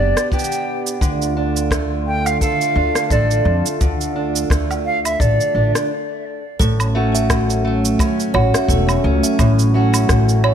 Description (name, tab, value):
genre	folktronica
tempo	86 BPM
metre	4/4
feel	swing 56% on 16ths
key	A mixolydian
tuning	A4 = 441 Hz
part	wooden flute	melody	0.0-5.9 s	D5 to G5	-21 LUFS	right 1 dB	ping-pong delay
part	warm analog pad	sustained chords	0.0-10.5 s	D3 to D5	-24 LUFS	right 1 dB	chorus, vintage 12-bit sampler grit
part	fingerpicked steel-string acoustic guitar	arpeggios	0.0-10.5 s	A2 to A4	-22 LUFS	right 1 dB	ping-pong delay
part	upright bass	bass	0.0-10.5 s	E1 to F2	-18 LUFS	equal	none
part	electronic rim click, cabasa and woodblock	drums	0.2-10.5 s	none	-24 LUFS	right 2 dB	none
part	kick drum	drums	0.3-10.2 s	none	-21 LUFS	left 1 dB	none
part	music box	second line	6.6-10.5 s	A4 to E5	-24 LUFS	right 5 dB	ping-pong delay
room	light reverb, studio ambience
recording	none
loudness	-15 LUFS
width	side -8 dB against mid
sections	0.0-6.6 A section; 6.6-10.5 B section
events	stop 5.9-6.6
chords	0.0 G; 1.0 Dm; 6.6 A6